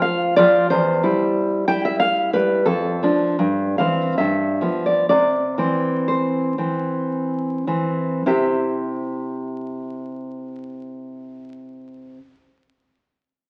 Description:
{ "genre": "romantic piece for solo classical guitar", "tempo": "50-92 BPM", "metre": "3/4", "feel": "rubato", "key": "C major", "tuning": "A4 = 440 Hz", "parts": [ { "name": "nylon-string guitar", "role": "solo", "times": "0.0-12.2 s", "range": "E2 to G5", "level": "-21 LUFS", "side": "equal", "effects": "none" } ], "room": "wet large studio reverb, RT60 1.3 s", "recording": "very old 78 rpm record, vinyl crackle", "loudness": "-20 LUFS", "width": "mono", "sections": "0.0-8.3 A section; 8.3-13.5 B section", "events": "slowing down 1.7-8.3", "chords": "0.0 Bdim (rootless); 0.7 C/E; 2.7 Dm/F; 3.4 C/G; 4.2 G7; 5.1 C" }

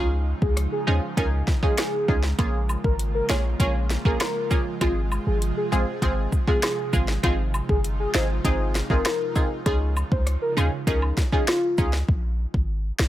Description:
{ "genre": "dancehall", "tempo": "99 BPM", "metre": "4/4", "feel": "straight", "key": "unclear", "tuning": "A4 = 440 Hz", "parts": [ { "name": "warm velvety synth lead", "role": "melody", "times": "0.0-11.9 s", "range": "F4 to Db5", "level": "-28 LUFS", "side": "left 1 dB", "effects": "chorus" }, { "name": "punchy chord stab", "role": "accompaniment", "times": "0.0-11.9 s", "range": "Ab3 to Ab4", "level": "-28 LUFS", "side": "right 1 dB", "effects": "chorus" }, { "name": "airy breathy pad", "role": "sustained chords", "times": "0.1-12.1 s", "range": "C3 to Ab4", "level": "-34 LUFS", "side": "right 2 dB", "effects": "chorus, tremolo, sidechain pumping" }, { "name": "warm 808-style bass", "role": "bass", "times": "0.0-13.1 s", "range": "G1 to Eb2", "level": "-24 LUFS", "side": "equal", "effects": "none" }, { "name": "afro-pop drum kit", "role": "drums", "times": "0.4-13.1 s", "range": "hi-hat, kick drum, rim click, snare drum", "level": "-24 LUFS", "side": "equal", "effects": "none" }, { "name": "woodblock and cabasa", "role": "percussion", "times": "2.4-11.9 s", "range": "none", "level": "-34 LUFS", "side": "equal", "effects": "none" } ], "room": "digital ambience", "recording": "none", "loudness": "-21 LUFS", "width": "side -14 dB against mid", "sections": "0.0-12.1 A section", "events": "break 12.1-13.1", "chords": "0.0 Dbadd9; 2.4 Bbm7; 4.8 Fm/Ab; 7.2 Ab6; 9.7 Dbadd9; 12.1 Absus2" }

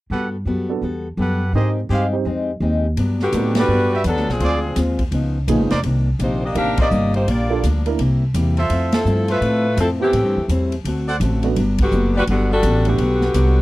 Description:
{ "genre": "jazz, big band swing", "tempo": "168 BPM", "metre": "4/4", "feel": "swing 63% on 8ths", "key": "G major", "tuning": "A4 = 440 Hz", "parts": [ { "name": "picked acoustic archtop guitar", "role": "accompaniment", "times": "0.1-13.6 s", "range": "G2 to A4", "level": "-24 LUFS", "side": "left 2 dB", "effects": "none" }, { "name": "brilliant trumpet section", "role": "stabs", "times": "0.1-12.2 s", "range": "D#4 to F#5", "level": "-24 LUFS", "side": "right 2 dB", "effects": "none" }, { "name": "upright bass", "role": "bass", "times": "0.1-13.6 s", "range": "E#1 to A2", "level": "-19 LUFS", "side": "equal", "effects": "none" }, { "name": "dark baby grand piano", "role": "accompaniment", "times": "0.7-13.0 s", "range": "A3 to C5", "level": "-24 LUFS", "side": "right 7 dB", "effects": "none" }, { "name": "swinging big-band drum kit", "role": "drums", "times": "3.0-13.5 s", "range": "hi-hat, kick drum, ride cymbal, snare drum", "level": "-26 LUFS", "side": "equal", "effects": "none" }, { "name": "bright saxophone section", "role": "melody", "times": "3.2-13.6 s", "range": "D3 to F5", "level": "-20 LUFS", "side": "left 1 dB", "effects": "none" } ], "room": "little or no reverb", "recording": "dry, close 1970s-style studio recording", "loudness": "-16 LUFS", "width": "side -18 dB against mid", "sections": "0.1-3.0 A section; 3.0-13.6 B section", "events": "band accent 3.5, 6.7, 8.9, 11.7", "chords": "0.1 Gmaj9; 1.5 Abmaj7; 3.0 Gmaj7; 4.4 Dm7b5; 5.1 C#9; 5.8 Cm9; 7.3 Gm7; 8.0 C7; 8.7 Fmaj7; 10.1 Am7; 10.9 D7; 11.6 Gmaj7" }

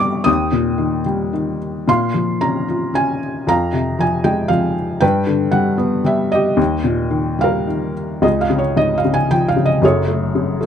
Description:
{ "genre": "classical, lyrical solo piano", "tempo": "114 BPM", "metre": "3/4", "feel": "rubato", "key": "Db lydian", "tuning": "A4 = 440 Hz", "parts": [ { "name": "felt-muted upright piano", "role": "solo", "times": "0.0-10.7 s", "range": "Gb1 to Eb6", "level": "-15 LUFS", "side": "left 1 dB", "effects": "none" } ], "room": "little or no reverb", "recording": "close, detailed microphones", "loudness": "-15 LUFS", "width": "side -8 dB against mid", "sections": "0.0-8.2 A section; 8.2-10.7 B section", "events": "none", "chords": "0.3 Eb; 1.9 Bbm; 3.5 Fm; 5.0 G; 6.6 Eb; 8.2 Db; 9.8 Gbmadd9" }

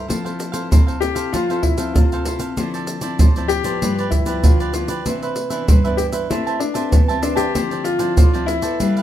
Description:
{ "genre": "samba and choro", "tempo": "96 BPM", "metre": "4/4", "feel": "straight", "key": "unclear", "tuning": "A4 = 441 Hz", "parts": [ { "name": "cavaquinho", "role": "accompaniment", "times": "0.0-9.0 s", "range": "D4 to A5", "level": "-28 LUFS", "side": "right 5 dB", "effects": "none" }, { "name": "nylon-string guitar", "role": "accompaniment", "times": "0.0-9.0 s", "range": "G2 to B4", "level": "-24 LUFS", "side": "left 1 dB", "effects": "none" }, { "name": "egg shaker, surdo and pandeiro", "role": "percussion", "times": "0.1-9.0 s", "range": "none", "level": "-17 LUFS", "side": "right 1 dB", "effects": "none" }, { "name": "clear grand piano", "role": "melody", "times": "1.0-9.0 s", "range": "B3 to G4", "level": "-22 LUFS", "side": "left 4 dB", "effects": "none" } ], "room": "moderate studio reverb, RT60 0.8 s", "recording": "minimal, uncompressed stereo recording", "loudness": "-16 LUFS", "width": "side -11 dB against mid", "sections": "0.0-9.0 A section", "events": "none", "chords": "0.1 Fmaj7; 2.6 Dm9; 3.8 G6; 5.1 Cmaj9; 6.3 Am9; 7.6 Dm9" }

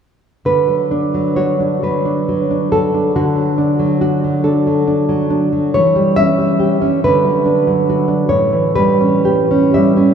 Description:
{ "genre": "romantic piece for solo classical guitar", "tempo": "46 BPM (dotted quarters)", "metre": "6/8", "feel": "uneven beats, rubato", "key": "D major", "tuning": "A4 = 440 Hz", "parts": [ { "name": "nylon-string guitar", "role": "solo", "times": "0.5-10.1 s", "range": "A2 to E5", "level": "-12 LUFS", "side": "right 1 dB", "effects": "none" } ], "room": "wet cathedral reverb, RT60 5.1 s", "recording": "in a vast, echoing space", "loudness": "-12 LUFS", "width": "side -7 dB against mid", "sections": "0.5-10.1 A section", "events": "none", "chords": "0.5 D; 5.7 C#dim/E; 7.0 D; 8.3 A7" }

